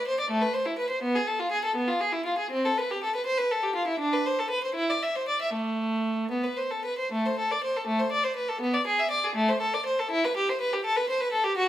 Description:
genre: classical, baroque-style suite movement for unaccompanied violin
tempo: 71-84 BPM (dotted quarters)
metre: 6/8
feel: rubato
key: A minor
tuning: A4 = 440 Hz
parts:
  - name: rich violin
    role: solo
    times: 0.0-11.7 s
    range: A3 to E5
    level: -25 LUFS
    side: equal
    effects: none
room: light reverb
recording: close, detailed microphones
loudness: -25 LUFS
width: side -12 dB against mid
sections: 0.0-7.1 A section; 7.1-11.7 B section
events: none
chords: none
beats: 0.30 | 1.02 1.75 | 2.51 3.26 | 4.00 4.75 | 5.53 6.31 | 7.12 7.88 | 8.61 9.35 | 10.11 10.85 | 11.58

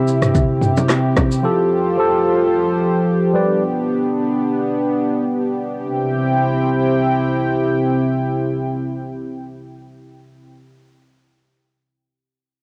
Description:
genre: afrobeats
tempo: free time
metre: none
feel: none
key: C major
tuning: A4 = 440 Hz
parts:
  - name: tine electric piano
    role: accompaniment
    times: 0.0-3.6 s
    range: C3 to E5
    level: -20 LUFS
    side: equal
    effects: cassette tape
  - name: warm analog pad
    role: sustained chords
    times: 0.0-10.5 s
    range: C3 to G5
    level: -20 LUFS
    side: equal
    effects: chorus, sidechain pumping, cassette tape
  - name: deep house drum kit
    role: drums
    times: 0.1-1.4 s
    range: handclaps, kick drum, rim click, shaker, toms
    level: -22 LUFS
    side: equal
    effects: cassette tape
  - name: congas and bongos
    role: percussion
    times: 0.4-1.3 s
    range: none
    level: -23 LUFS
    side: equal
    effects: none
room: light reverb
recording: home recording on cassette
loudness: -18 LUFS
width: mono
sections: 0.0-5.8 A section; 5.8-10.2 B section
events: none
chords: 0.0 C; 1.4 Fadd9; 3.3 G; 5.8 C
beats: free time

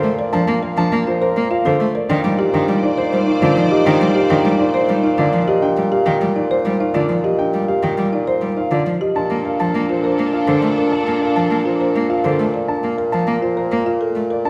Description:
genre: classical, minimalist pattern music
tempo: 102 BPM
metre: 3/4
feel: straight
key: Bb major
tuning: A4 = 438 Hz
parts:
  - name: warm concert grand piano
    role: melody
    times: 0.0-14.5 s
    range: Bb4 to A5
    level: -25 LUFS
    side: equal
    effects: none
  - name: rich cello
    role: accompaniment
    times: 0.0-14.3 s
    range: D3 to Bb3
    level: -23 LUFS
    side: equal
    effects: none
  - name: folk marimba with medium mallets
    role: arpeggios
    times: 0.0-14.5 s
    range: D4 to C5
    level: -24 LUFS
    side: equal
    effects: none
  - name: clear bassoon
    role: bass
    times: 0.0-14.5 s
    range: Bb2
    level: -24 LUFS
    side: equal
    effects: none
  - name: mellow French horn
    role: second line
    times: 2.1-5.4, 9.2-12.5 s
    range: D4 to Eb4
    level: -24 LUFS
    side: equal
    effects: none
  - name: clear studio string section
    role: sustained chords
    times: 2.1-5.4, 9.2-12.5 s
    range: D4 to D5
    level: -29 LUFS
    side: equal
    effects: none
room: wet recital hall reverb, RT60 1.6 s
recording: heard from further back in the room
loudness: -17 LUFS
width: mono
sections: 0.0-14.5 A section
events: none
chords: 0.0 Bbmaj7; 2.1 Cmadd9/Bb; 9.2 Bbmaj7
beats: | 0.33 0.92 1.51 | 2.10 2.69 3.27 | 3.86 4.45 5.04 | 5.63 6.21 6.80 | 7.39 7.98 8.57 | 9.15 9.74 10.33 | 10.92 11.51 12.10 | 12.69 13.27 13.86 | 14.45

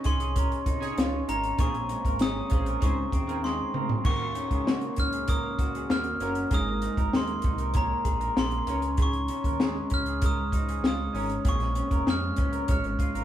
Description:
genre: indie pop, bedroom pop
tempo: 97 BPM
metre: 4/4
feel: straight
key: Db major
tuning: A4 = 440 Hz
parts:
  - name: glockenspiel with hard plastic mallets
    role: melody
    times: 0.0-13.2 s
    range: Bb5 to F6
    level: -32 LUFS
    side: equal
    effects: none
  - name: chorused retro synth keys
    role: accompaniment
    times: 0.0-13.2 s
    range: Bb3 to Db5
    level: -39 LUFS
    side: right 2 dB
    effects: none
  - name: electric guitar through a small old amp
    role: accompaniment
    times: 0.0-13.2 s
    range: Bb2 to Ab4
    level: -33 LUFS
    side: left 1 dB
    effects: vibrato effect
  - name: compact cocktail drum kit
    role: drums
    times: 0.0-13.2 s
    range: crash cymbal, hi-hat, kick drum, snare drum, toms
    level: -27 LUFS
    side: equal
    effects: none
  - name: chorused synth bass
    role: bass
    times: 0.1-13.2 s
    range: F1 to F2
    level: -33 LUFS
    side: equal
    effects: none
  - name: electric guitar through a small old amp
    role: second line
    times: 0.2-13.2 s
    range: F4 to Db5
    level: -37 LUFS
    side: right 3 dB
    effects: none
room: moderate stone room reverb, RT60 1.0 s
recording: band playing live in one room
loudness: -24 LUFS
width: side -11 dB against mid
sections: 0.0-4.1 A section; 4.1-13.2 B section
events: drum fill 3.4-4.1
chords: 0.0 Dbsus2; 1.6 Bbm7; 2.8 Dbmaj7; 4.1 Ebm7; 6.5 Absus2; 8.7 Dbsus2; 11.5 Bbm7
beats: 0.36 0.97 | 1.59 2.21 2.82 3.44 | 4.05 4.67 5.29 5.90 | 6.52 7.13 7.75 8.37 | 8.98 9.60 10.22 10.84 | 11.45 12.07 12.69

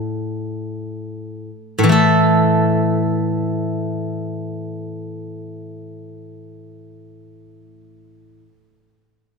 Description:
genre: chinese traditional, Chinese solo plucked strings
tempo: free time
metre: none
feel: none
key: unclear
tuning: A4 = 440 Hz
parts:
  - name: steel-string zither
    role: solo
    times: 0.0-8.5 s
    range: A2 to A4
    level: -18 LUFS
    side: equal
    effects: none
room: moderate concert hall reverb, RT60 2.1 s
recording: none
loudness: -17 LUFS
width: side -5 dB against mid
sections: 0.0-1.9 A section; 1.9-6.1 B section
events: slowing down 0.0-1.9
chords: none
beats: free time

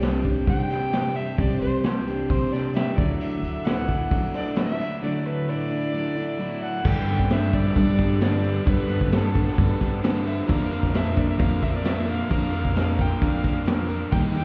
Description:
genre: folk rock and heartland rock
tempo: 132 BPM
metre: 4/4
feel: straight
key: unclear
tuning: A4 = 441 Hz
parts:
  - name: picked plugged-in steel-string acoustic guitar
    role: accompaniment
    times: 0.0-14.4 s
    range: C3 to Bb4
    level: -30 LUFS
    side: equal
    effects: none
  - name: accordion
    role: sustained chords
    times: 0.0-14.4 s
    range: A4 to E6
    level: -44 LUFS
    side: equal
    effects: none
  - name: crunchy overdriven guitar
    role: riff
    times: 0.0-14.4 s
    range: G2 to Bb4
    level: -33 LUFS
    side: equal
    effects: none
  - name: upright bass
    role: bass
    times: 0.0-14.4 s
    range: C2 to D3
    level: -29 LUFS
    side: equal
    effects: none
  - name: vintage drum kit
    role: drums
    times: 0.0-14.4 s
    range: crash cymbal, hi-hat, kick drum, snare drum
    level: -28 LUFS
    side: equal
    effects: none
  - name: tambourine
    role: percussion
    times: 0.0-14.4 s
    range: none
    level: -71 LUFS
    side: equal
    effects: none
  - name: warm fiddle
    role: melody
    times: 0.5-14.4 s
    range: A4 to G5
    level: -34 LUFS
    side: equal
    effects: tape echo
room: small room ambience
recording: heard muffled through a wall, stone room reverb, EQ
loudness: -24 LUFS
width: mono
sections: 0.0-6.8 A section; 6.8-14.4 B section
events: fiddle solo 0.0-6.8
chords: 0.0 Csus2; 3.0 Dadd9; 6.8 Gadd9; 10.5 Bb/F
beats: 0.01 0.47 0.92 | 1.38 1.83 2.29 2.75 | 3.20 3.66 4.11 4.57 | 5.02 5.48 5.93 6.39 | 6.84 7.30 7.76 8.21 | 8.67 9.12 9.58 10.03 | 10.49 10.94 11.40 11.85 | 12.30 12.76 13.21 13.67 | 14.12

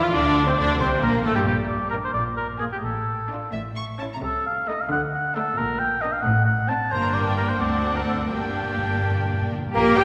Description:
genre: quick classical-period movement for symphony orchestra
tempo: 88 BPM (dotted quarters)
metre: 6/8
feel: rubato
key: G minor from 4.2 s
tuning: A4 = 440 Hz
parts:
  - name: rich studio violin section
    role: melody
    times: 0.0-10.0 s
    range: G4 to C#6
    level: -36 LUFS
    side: equal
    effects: none
  - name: clear studio violin section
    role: second line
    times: 0.0-10.0 s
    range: G3 to G4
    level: -34 LUFS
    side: equal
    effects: none
  - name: mellow oboe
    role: second line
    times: 0.0-10.0 s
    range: Bb3 to A5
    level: -27 LUFS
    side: equal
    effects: none
  - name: clear studio viola section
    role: accompaniment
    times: 0.0-10.0 s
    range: G3 to F4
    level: -31 LUFS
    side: equal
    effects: none
  - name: rich studio cello section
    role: bass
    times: 0.0-10.0 s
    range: D2 to G4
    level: -31 LUFS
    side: equal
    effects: none
  - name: rich studio double bass section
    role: bass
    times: 0.1-10.0 s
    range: G1 to G2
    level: -31 LUFS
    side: equal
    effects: none
  - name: timpani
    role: percussion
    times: 0.1-0.8, 6.9-9.7 s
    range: G2 to D3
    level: -34 LUFS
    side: equal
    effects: none
  - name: bright concert flute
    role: second line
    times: 9.7-10.0 s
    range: Bb4 to G5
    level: -30 LUFS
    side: equal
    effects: none
  - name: mellow clarinet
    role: second line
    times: 9.7-10.0 s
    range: Bb3 to G4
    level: -24 LUFS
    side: equal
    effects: none
  - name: clear trumpet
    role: stabs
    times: 9.7-10.0 s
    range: Bb3 to G4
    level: -24 LUFS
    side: equal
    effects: none
  - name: mellow French horn section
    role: sustained chords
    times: 9.8-10.0 s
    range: Bb2 to G3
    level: -33 LUFS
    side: equal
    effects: none
room: wet concert hall reverb, RT60 2.4 s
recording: none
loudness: -23 LUFS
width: mono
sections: 0.0-9.7 A section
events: timpani fill 8.3-9.7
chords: 0.1 Am/D; 1.5 Bb; 2.8 Dm/A; 3.5 A; 4.2 Adim/C; 4.9 D5; 5.6 Gm/Bb; 6.2 D5/A; 6.9 Gm; 7.6 D7; 8.3 Gm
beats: | 0.13 0.80 | 1.46 2.14 | 2.83 3.53 | 4.23 4.91 | 5.58 6.25 | 6.92 7.60 | 8.31 9.03 | 9.74

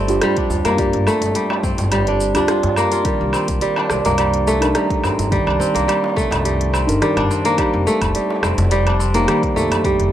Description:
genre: organic downtempo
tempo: 106 BPM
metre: 4/4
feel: swing 54% on 16ths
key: unclear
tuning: A4 = 438 Hz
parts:
  - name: muted felt-like synth keys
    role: accompaniment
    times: 0.0-10.1 s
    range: Eb3 to Bb5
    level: -23 LUFS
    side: right 1 dB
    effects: chorus, vintage 12-bit sampler grit, sidechain pumping, tape echo
  - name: kora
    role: arpeggios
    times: 0.0-10.1 s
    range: G3 to F4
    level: -18 LUFS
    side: equal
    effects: tape echo
  - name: upright bass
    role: bass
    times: 0.0-10.1 s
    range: F1 to G2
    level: -22 LUFS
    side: equal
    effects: transformer saturation, sidechain pumping
  - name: organic electronic drum kit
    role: drums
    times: 0.1-10.1 s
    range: hi-hat, rim click, shaker, woodblock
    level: -24 LUFS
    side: equal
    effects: none
  - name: darbuka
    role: percussion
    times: 0.1-9.8 s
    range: none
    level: -29 LUFS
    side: right 1 dB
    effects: none
  - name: electronic kick drum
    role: drums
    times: 0.4-10.0 s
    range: none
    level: -23 LUFS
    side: equal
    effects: none
room: light reverb, studio reverb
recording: dry, gritty hardware recording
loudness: -15 LUFS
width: side -11 dB against mid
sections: 0.0-10.1 A section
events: none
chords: 0.0 Gm11; 3.1 Cm7; 7.6 F7sus4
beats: 0.22 | 0.79 1.35 1.92 2.48 | 3.05 3.62 4.18 4.75 | 5.32 5.88 6.45 7.01 | 7.58 8.14 8.71 9.28 | 9.84

